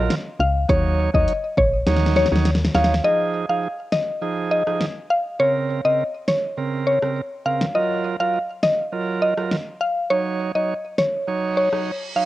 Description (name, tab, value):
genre	dancehall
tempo	102 BPM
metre	4/4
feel	straight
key	Eb dorian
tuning	A4 = 439 Hz
part	bright tonewheel organ	accompaniment	0.0-12.3 s	Db3 to Db5	-25 LUFS	right 5 dB	cassette tape
part	woody FM bass	bass	0.0-3.0 s	Bb1 to Eb2	-21 LUFS	left 1 dB	none
part	deep house drum kit	drums	0.1-11.9 s	hi-hat, kick drum, rim click, snare drum	-23 LUFS	left 1 dB	cassette tape
part	mallet-like synth pluck	melody	0.4-12.3 s	Db5 to F5	-21 LUFS	left 1 dB	chorus, cassette tape, tape echo
part	reverse cymbal	sound effects	11.5-12.3 s	none	-34 LUFS	right 3 dB	none
room	light reverb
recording	home recording on cassette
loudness	-19 LUFS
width	side -15 dB against mid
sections	0.0-3.0 A section; 3.0-12.3 B section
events	drum fill 1.9-3.0; reverse cymbal 11.5-12.3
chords	0.0 Gbmaj7; 0.7 Ebm7; 3.0 Fm7; 5.4 Bbmadd9; 7.8 Gbmaj7; 10.1 Ebm7